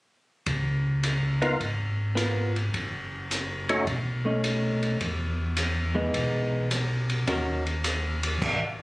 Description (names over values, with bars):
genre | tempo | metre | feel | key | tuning
soul jazz organ trio | 106 BPM | 4/4 | swing 68% on 8ths | unclear | A4 = 440 Hz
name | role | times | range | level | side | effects
mellow tonewheel organ | bass | 0.5-8.4 s | Gb1 to E2 | -28 LUFS | equal | chorus vibrato, slow rotary speaker
open jazz drum kit | drums | 0.5-8.6 s | crash cymbal, hi-hat, kick drum, ride cymbal | -30 LUFS | equal | none
percussive tonewheel organ | melody | 1.4-3.9 s | A3 to Bb4 | -24 LUFS | equal | slow rotary speaker, overdrive
vintage hollow-body jazz guitar | accompaniment | 2.2-7.6 s | Eb3 to Bb4 | -28 LUFS | equal | none
room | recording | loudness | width
light reverb | recorded on a phone in the room, club reverb | -25 LUFS | side -21 dB against mid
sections
0.5-8.8 A section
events
none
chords
0.5 Db13; 2.7 Gbm; 3.9 Cb9; 5.0 Emaj7; 7.3 Ebm7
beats
| 0.46 1.03 1.60 2.17 | 2.73 3.30 3.87 4.44 | 5.01 5.58 6.14 6.71 | 7.28 7.85 8.42